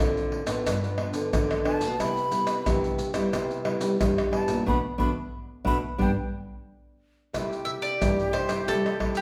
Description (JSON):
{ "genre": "samba and choro", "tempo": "90 BPM", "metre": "4/4", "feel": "straight", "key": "unclear", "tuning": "A4 = 440 Hz", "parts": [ { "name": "nylon-string guitar", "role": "accompaniment", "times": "0.0-9.2 s", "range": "G2 to F4", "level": "-33 LUFS", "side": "equal", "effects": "none" }, { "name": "nylon-string guitar", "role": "bass", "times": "0.0-9.0 s", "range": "G2 to G3", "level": "-32 LUFS", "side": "equal", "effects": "none" }, { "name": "maracas, pandeiro, tamborim and surdo", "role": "percussion", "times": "0.2-9.2 s", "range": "none", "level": "-32 LUFS", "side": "equal", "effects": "none" }, { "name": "breathy jazz flute", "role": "second line", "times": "1.7-9.2 s", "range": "G4 to B5", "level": "-34 LUFS", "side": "equal", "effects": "none" }, { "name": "mandolin", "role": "melody", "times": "7.7-9.2 s", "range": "G4 to E5", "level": "-31 LUFS", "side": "equal", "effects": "none" } ], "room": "wet large studio reverb, RT60 1.2 s", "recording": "band playing live in one room", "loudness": "-27 LUFS", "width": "mono", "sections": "0.0-7.3 A section; 7.3-9.2 B section", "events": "flute solo 0.0-7.3; band accent 4.7-7.3", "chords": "0.0 Dm7; 0.7 G7; 2.0 Cmaj7; 4.7 Bm7; 6.0 G; 7.3 C6", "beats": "0.66 1.33 | 2.00 2.67 3.33 4.00 | 4.67 5.34 6.01 6.67 | 7.34 8.01 8.68" }